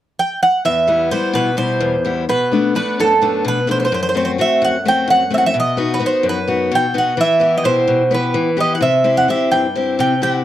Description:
greek folk; 257 BPM (eighths); 7/8; straight; E harmonic minor; A4 = 439 Hz
Greek bouzouki; melody; 0.2-10.4 s; A4 to G5; -16 LUFS; right 2 dB
picked steel-string acoustic guitar; accompaniment; 0.6-10.4 s; E2 to G4; -18 LUFS; left 4 dB
light reverb, small room ambience; dry, close 1970s-style studio recording; -14 LUFS; side -12 dB against mid
0.6-10.4 A section
0.0 N.C.; 0.6 Em; 2.3 Bm7; 3.9 F#dim; 5.5 B; 7.2 Em; 8.8 C
0.18 0.41 | 0.65 0.88 1.11 1.35 1.58 1.81 2.05 | 2.28 2.51 2.75 2.98 3.21 3.45 3.68 | 3.91 4.15 4.38 4.61 4.85 5.08 5.31 | 5.55 5.78 6.01 6.25 6.48 6.71 6.95 | 7.18 7.42 7.65 7.88 8.12 8.35 8.58 | 8.81 9.05 9.28 9.52 9.75 9.98 10.21

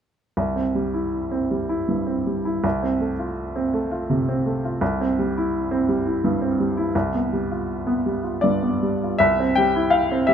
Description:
classical, romantic character piece for solo piano; 76-86 BPM; 3/4; rubato; C major; A4 = 440 Hz
bright baby grand piano; solo; 0.4-10.3 s; C2 to G5; -20 LUFS; equal
moderate recital hall reverb, RT60 1.6 s; close, detailed microphones; -20 LUFS; side -8 dB against mid
0.4-9.2 A section; 9.2-10.3 B section
0.4 C; 2.6 F/C; 4.8 C; 6.9 G7/C; 9.2 C
| 0.37 1.13 1.88 | 2.64 3.37 4.09 | 4.81 5.52 6.22 | 6.94 7.67 8.43 | 9.20 9.93

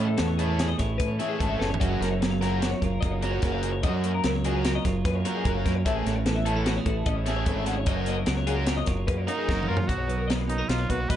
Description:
math rock and midwest emo; 148 BPM; 5/4; straight; F# major; A4 = 439 Hz
clean electric guitar; accompaniment; 0.0-11.2 s; F#2 to C#5; -31 LUFS; right 5 dB; lush chorus
twelve-string electric guitar; arpeggios; 0.0-11.2 s; F#4 to F#5; -32 LUFS; left 5 dB; wide subtle chorus, tape echo
cranked stack guitar; riff; 0.0-9.8 s; F#3 to A#4; -33 LUFS; right 1 dB; overdrive, tape echo
growling fingered electric bass; bass; 0.0-11.2 s; F#1 to A2; -28 LUFS; equal; overdrive
crisp fusion drum kit; drums; 0.2-11.2 s; hi-hat, kick drum, snare drum, toms; -29 LUFS; equal; tape echo
brilliant trumpet; melody; 9.3-11.2 s; D#4 to B4; -31 LUFS; right 3 dB; tape echo
light reverb, studio reverb; echo-heavy mix, nothing above 10.5 kHz; -23 LUFS; side -11 dB against mid
0.0-9.9 A section; 9.9-11.2 B section
drum fill 1.6, 9.5-9.9
0.0 Amaj7; 1.8 F#maj7; 5.9 Amaj7; 7.9 F#maj7; 9.9 Bmaj7
0.19 0.60 1.00 1.40 | 1.81 2.21 2.62 3.02 3.42 | 3.83 4.23 4.64 5.04 5.45 | 5.85 6.26 6.66 7.06 7.47 | 7.87 8.28 8.68 9.09 9.49 | 9.89 10.30 10.71 11.11

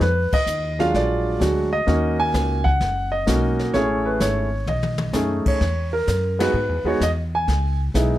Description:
jazz piano trio; 128 BPM; 4/4; swing 68% on 8ths; A4 = 440 Hz
warm concert grand piano; melody; 0.0-8.2 s; F#3 to G#5; -21 LUFS; right 1 dB
upright bass; bass; 0.0-8.2 s; F#1 to G#2; -23 LUFS; equal
jazz brush drum kit; drums; 0.0-8.2 s; brushed snare drum, crash cymbal, hi-hat, kick drum, ride cymbal, snare drum, toms; -27 LUFS; left 1 dB
moderate club reverb, RT60 0.5 s; -19 LUFS; side -14 dB against mid
0.0-8.2 A section
band accent 0.2, 6.3; drum fill 4.7-5.1
0.0 D#sus2; 0.9 A#7b13; 1.9 D#m7; 3.7 Amaj7; 4.7 B13; 5.6 Eadd9; 7.5 C#m7
| 0.01 0.48 0.94 1.41 | 1.88 2.34 2.81 3.27 | 3.74 4.21 4.67 5.14 | 5.61 6.08 6.54 7.01 | 7.48 7.95

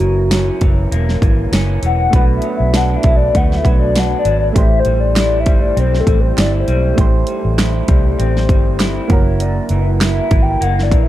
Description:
indie pop, bedroom pop; 99 BPM; 4/4; swing 55% on 16ths; A dorian; A4 = 439 Hz
hollow clarinet-like synth lead; melody; 0.0-11.1 s; F#4 to G5; -19 LUFS; left 3 dB; lush chorus, slapback echo
electric guitar through a small old amp; accompaniment; 0.0-11.1 s; F#2 to E4; -23 LUFS; left 2 dB; lush chorus, vibrato effect
soft electric-piano-like synth keys; accompaniment; 0.0-11.1 s; F#3 to C5; -23 LUFS; right 5 dB; chorus, cassette tape
vintage muted fingered electric bass; bass; 0.0-11.1 s; E1 to D2; -16 LUFS; equal
pop drum kit; drums; 0.0-11.1 s; hi-hat, kick drum, snare drum; -15 LUFS; equal
group handclap; percussion; 5.2-10.2 s; -28 LUFS; right 6 dB
light reverb, digital ambience; dark, warm production; -12 LUFS; side -14 dB against mid
0.0-11.1 A section
soft synth lead solo 0.0-11.1
0.0 F#7; 2.1 Bm7; 4.6 Am7; 9.1 F#7
0.32 0.92 1.53 | 2.13 2.74 3.35 3.95 | 4.56 5.17 5.77 6.38 | 6.98 7.59 8.20 8.80 | 9.41 10.01 10.62

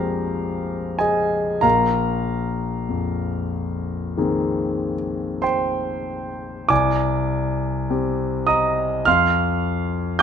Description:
classical, impressionist solo piano; 47-53 BPM; 4/4; rubato; A4 = 440 Hz
warm concert grand piano; solo; 0.0-10.2 s; Bb1 to G6; -19 LUFS; equal
moderate recital hall reverb, RT60 1.4 s; close, detailed microphones; -19 LUFS; side -8 dB against mid
0.0-10.2 A section
0.0 Bb13; 1.6 Bb9sus4; 6.7 Cm7; 9.1 F5
0.40 | 1.64 2.91 4.18 5.45 | 6.70 7.89 9.06 10.20

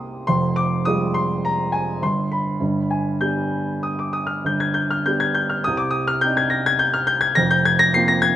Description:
classical, lyrical solo piano; 94-106 BPM; 3/4; rubato; A4 = 440 Hz
dark grand piano; solo; 0.0-8.4 s; F1 to C7; -18 LUFS; equal
little or no reverb; close, detailed microphones; -18 LUFS; side -12 dB against mid
0.0-8.4 A section
0.3 Fmadd9; 2.0 N.C.; 2.6 G; 5.7 Cmadd9; 7.4 Fsus4
| 0.29 0.86 1.43 | 2.02 2.61 3.22 | 3.84 4.46 5.06 | 5.65 6.23 6.80 | 7.37 7.94

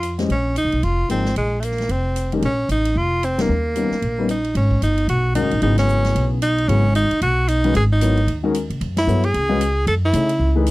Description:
modal jazz; 226 BPM; 4/4; swing 60% on 8ths; Bb dorian, G# minor from 4.6 s; A4 = 437 Hz
clear tenor saxophone; melody; 0.0-10.5 s; Ab3 to A4; -21 LUFS; right 1 dB
upright bass; bass; 0.0-10.7 s; F1 to C#3; -20 LUFS; equal
swinging big-band drum kit; drums; 0.0-10.7 s; hi-hat, kick drum, ride cymbal, snare drum; -32 LUFS; equal
warm concert grand piano; accompaniment; 0.2-10.7 s; C#3 to E5; -22 LUFS; left 4 dB
little or no reverb; dry, close 1970s-style studio recording; -17 LUFS; side -19 dB against mid
0.0-4.6 A section; 4.6-10.7 B section
band accent 3.4, 5.8, 8.9
0.0 Bb7sus2; 3.5 Eb7b13; 4.6 G#m11; 8.8 F#m11
0.03 | 0.29 0.56 0.83 1.09 | 1.36 1.62 1.89 2.16 | 2.42 2.69 2.96 3.22 | 3.49 3.75 4.02 4.29 | 4.55 4.82 5.09 5.35 | 5.62 5.88 6.15 6.42 | 6.68 6.95 7.21 7.48 | 7.75 8.01 8.28 8.54 | 8.81 9.07 9.34 9.60 | 9.87 10.13 10.40 10.66

